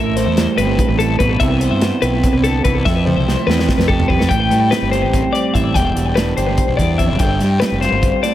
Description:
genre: math rock and midwest emo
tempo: 290 BPM (eighths)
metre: 7/8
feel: straight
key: unclear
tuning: A4 = 440 Hz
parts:
  - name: electric guitar through a small old amp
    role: accompaniment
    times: 0.0-8.3 s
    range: E2 to G4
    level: -19 LUFS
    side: right 4 dB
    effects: none
  - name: twelve-string electric guitar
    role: arpeggios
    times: 0.0-8.3 s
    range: A4 to G5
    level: -19 LUFS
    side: left 5 dB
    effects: analog delay
  - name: fuzz fingered electric bass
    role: bass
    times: 0.0-8.1 s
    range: E1 to A2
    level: -19 LUFS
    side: equal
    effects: overdrive
  - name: modern studio drum kit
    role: drums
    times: 0.2-8.3 s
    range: hi-hat, kick drum, snare drum, toms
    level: -19 LUFS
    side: equal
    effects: analog delay
room: light reverb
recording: echo-heavy mix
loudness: -13 LUFS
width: side -12 dB against mid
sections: 0.0-4.3 A section; 4.3-8.3 B section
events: drum fill 2.9-4.3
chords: 0.0 Am7; 1.4 Cmaj7; 2.9 Fmaj7; 4.3 Am7; 5.8 Em7; 7.2 G7sus4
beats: 0.16 0.37 0.57 0.78 0.99 1.20 | 1.40 1.61 1.82 2.02 2.23 2.44 2.65 | 2.85 3.06 3.27 3.48 3.68 3.89 4.10 | 4.30 4.51 4.72 4.92 5.13 5.34 5.55 | 5.75 5.96 6.17 6.37 6.58 6.79 6.99 | 7.20 7.41 7.61 7.82 8.03 8.23

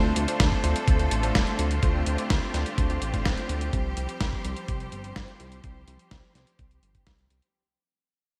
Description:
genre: italo disco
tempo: 126 BPM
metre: 4/4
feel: straight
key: unclear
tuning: A4 = 438 Hz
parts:
  - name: bright symphonic string section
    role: sustained chords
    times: 0.0-7.5 s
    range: D3 to C5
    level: -35 LUFS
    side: equal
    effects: none
  - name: clear electric grand piano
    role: stabs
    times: 0.0-3.7 s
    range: A3 to C5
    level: -35 LUFS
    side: equal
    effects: delay
  - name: chorused synth bass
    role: bass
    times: 0.0-7.4 s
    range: D1 to D2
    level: -31 LUFS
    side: equal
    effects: tube saturation
  - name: dusty soul sampler-style drum kit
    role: drums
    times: 0.2-7.5 s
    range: hi-hat, snare drum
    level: -33 LUFS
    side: equal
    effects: none
  - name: electronic kick drum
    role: drums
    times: 0.4-7.2 s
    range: none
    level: -28 LUFS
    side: equal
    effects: none
room: moderate lush hall reverb, RT60 1.8 s, digital ambience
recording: bright 1980s-style digital production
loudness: -26 LUFS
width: mono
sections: 0.0-7.5 A section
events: fade-out 0.0-7.5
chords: 0.0 Dm7; 3.7 Csus4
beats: 0.40 0.88 1.35 | 1.83 2.30 2.78 3.26 | 3.73 4.21 4.68 5.16 | 5.64 6.11 6.59 7.07

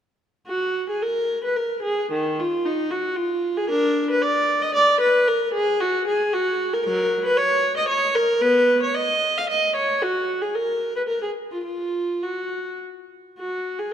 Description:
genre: classical, baroque-style suite movement for unaccompanied viola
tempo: 103-117 BPM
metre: 3/4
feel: rubato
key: F# major from 6.9 s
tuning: A4 = 440 Hz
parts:
  - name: warm viola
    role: solo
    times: 0.5-13.9 s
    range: Eb3 to E#5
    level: -20 LUFS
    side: equal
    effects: none
room: moderate concert hall reverb, RT60 2.2 s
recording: none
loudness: -20 LUFS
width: side -9 dB against mid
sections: 0.5-13.4 A section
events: none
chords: none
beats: | 0.48 1.03 1.56 | 2.11 2.65 3.17 | 3.70 4.22 4.75 | 5.28 5.81 6.33 | 6.85 7.37 7.90 | 8.42 8.95 9.49 | 10.02 10.55 11.09 | 11.66 12.23 12.81 | 13.38 13.92

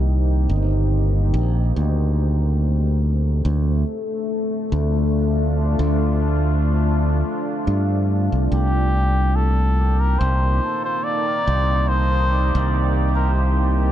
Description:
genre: ambient dub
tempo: 71 BPM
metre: 4/4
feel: swing 54% on 16ths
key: C dorian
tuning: A4 = 439 Hz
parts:
  - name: deep dark ambient pad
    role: sustained chords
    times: 0.0-13.9 s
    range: A3 to C5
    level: -25 LUFS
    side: equal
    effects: chorus, built-in reverb
  - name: modern bright fingered electric bass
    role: bass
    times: 0.0-13.9 s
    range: G1 to G2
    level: -18 LUFS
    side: equal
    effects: none
  - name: trumpet with cup mute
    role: melody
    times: 8.5-13.9 s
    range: G4 to D5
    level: -23 LUFS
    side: left 1 dB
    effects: dub echo
room: light reverb, small room ambience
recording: echo-heavy mix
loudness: -17 LUFS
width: side -12 dB against mid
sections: 0.0-13.9 A section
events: none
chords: 0.0 Cm7; 1.8 Dm7; 8.5 Cm7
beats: 0.07 0.92 | 1.76 2.61 3.45 4.30 | 5.14 5.99 6.83 7.68 | 8.52 9.37 10.21 11.06 | 11.90 12.75 13.59

